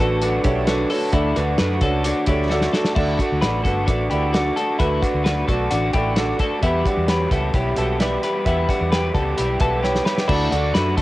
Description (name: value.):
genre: jangly indie pop.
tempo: 131 BPM.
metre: 4/4.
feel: straight.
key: D major.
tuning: A4 = 440 Hz.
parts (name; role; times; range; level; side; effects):
raw garage guitar; accompaniment; 0.0-11.0 s; E2 to G4; -26 LUFS; right 2 dB; overdrive.
warm upright piano; accompaniment; 0.0-11.0 s; D4 to A5; -24 LUFS; right 3 dB; none.
twelve-string electric guitar; arpeggios; 0.0-11.0 s; A3 to B4; -24 LUFS; left 4 dB; none.
vintage muted fingered electric bass; bass; 0.0-11.0 s; G1 to F#2; -24 LUFS; equal; none.
cloth-damped thuddy drum kit; drums; 0.0-11.0 s; crash cymbal, hi-hat, kick drum, snare drum; -23 LUFS; equal; cassette tape.
room: light reverb.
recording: home recording on cassette.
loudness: -17 LUFS.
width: side -17 dB against mid.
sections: 0.0-3.0 A section; 3.0-10.3 B section.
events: drum fill 2.5-3.0, 9.8-10.3; upright piano fill 5.7-6.6.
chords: 0.0 Aadd9; 1.1 D; 6.6 Em; 10.3 D.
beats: 0.22 0.68 | 1.13 1.59 2.05 2.50 | 2.96 3.42 3.88 4.33 | 4.79 5.25 5.71 6.17 | 6.62 7.08 7.54 8.00 | 8.46 8.91 9.37 9.83 | 10.29 10.75.